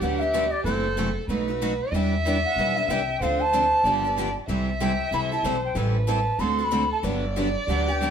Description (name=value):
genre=acoustic string swing (jazz manouche)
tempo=188 BPM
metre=4/4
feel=swing 60% on 8ths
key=G major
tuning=A4 = 435 Hz
part: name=bright reedy bansuri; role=melody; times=0.0-8.1 s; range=C5 to C6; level=-25 LUFS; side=right 1 dB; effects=none
part: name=dark violin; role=second line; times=0.0-8.1 s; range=G4 to E5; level=-28 LUFS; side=equal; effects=none
part: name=picked steel-string acoustic guitar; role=accompaniment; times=0.0-8.1 s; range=B2 to A4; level=-30 LUFS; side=left 4 dB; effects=none
part: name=picked steel-string acoustic guitar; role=accompaniment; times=0.0-8.1 s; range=B2 to B4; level=-30 LUFS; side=right 4 dB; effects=none
part: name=upright bass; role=bass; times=0.0-8.1 s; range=F#1 to E2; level=-29 LUFS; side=equal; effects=none
room=wet studio reverb, RT60 0.8 s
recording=band playing live in one room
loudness=-22 LUFS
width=side -8 dB against mid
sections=0.0-8.1 A section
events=none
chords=0.0 Gmaj7; 0.6 F#m7b5; 1.3 B7; 1.9 Em9; 3.2 Dm7; 3.8 G7; 4.5 C6; 5.8 Am7; 6.4 D7; 7.0 Gmaj7